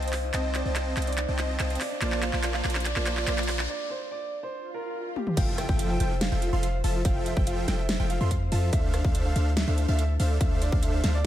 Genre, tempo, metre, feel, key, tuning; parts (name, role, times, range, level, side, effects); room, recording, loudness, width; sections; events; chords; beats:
future bass; 143 BPM; 4/4; half-time; F major; A4 = 440 Hz
dark baby grand piano; melody; 0.0-11.3 s; G4 to G5; -36 LUFS; right 3 dB; sidechain pumping, tape echo
concert harp; arpeggios; 0.0-11.3 s; D4 to C5; -39 LUFS; left 7 dB; sidechain pumping, tape echo
supersaw chords; riff; 0.0-11.2 s; F3 to C6; -32 LUFS; right 1 dB; cassette tape, sidechain pumping, tape echo
warm 808-style bass; bass; 0.0-11.3 s; F1 to F2; -27 LUFS; equal; sidechain pumping
dubstep drum kit; drums; 0.0-11.1 s; crash cymbal, handclaps, hi-hat, rim click, snare drum, toms; -31 LUFS; equal
riser, swell and impact; sound effects; 0.0-7.1 s; -38 LUFS; equal
wide unison pluck; arpeggios; 5.4-11.2 s; F5 to C6; -42 LUFS; moving between left 6 dB and right 7 dB; auto-pan, sidechain pumping
electronic kick drum; drums; 5.4-10.8 s; -26 LUFS; equal
light reverb; -24 LUFS; side -12 dB against mid
0.0-5.4 A section; 5.4-11.3 B section
build-up 0.0-5.4; drum fill 0.0-3.7, 5.2; riser 0.0-3.7; filter sweep on supersaw synth 0.0-5.4; filter sweep on harp 0.0-5.4; break 3.7-5.4; swell 4.7-5.4; drop 5.4-11.3; impact 5.4-7.1
0.0 F7/C; 1.8 Bbmaj7; 5.4 Fmaj7; 8.7 Dm9
| 0.34 0.76 1.18 1.60 | 2.02 2.44 2.85 3.27 | 3.69 4.11 4.53 4.95 | 5.37 5.79 6.21 6.63 | 7.05 7.47 7.89 8.31 | 8.73 9.15 9.57 9.99 | 10.41 10.83 11.25